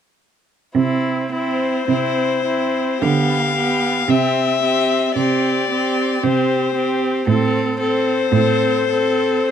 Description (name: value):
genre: classical, slow romantic movement for string quartet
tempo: 48-58 BPM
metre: 3/4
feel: rubato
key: C major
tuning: A4 = 440 Hz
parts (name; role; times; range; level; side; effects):
- rich cello; bass; 0.7-9.4 s; A2 to D3; -21 LUFS; right 6 dB; none
- rich violin; second line; 0.8-9.5 s; E4 to A4; -22 LUFS; left 2 dB; none
- rich viola; accompaniment; 0.8-9.5 s; B3 to C4; -21 LUFS; right 4 dB; none
- rich violin; melody; 1.3-9.5 s; C5 to F5; -20 LUFS; left 8 dB; none
room: moderate recital hall reverb, RT60 1.6 s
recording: close, detailed microphones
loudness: -16 LUFS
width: side -8 dB against mid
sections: 0.8-9.5 A section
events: none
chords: 0.8 C; 3.0 G7/D; 4.1 C; 7.3 Am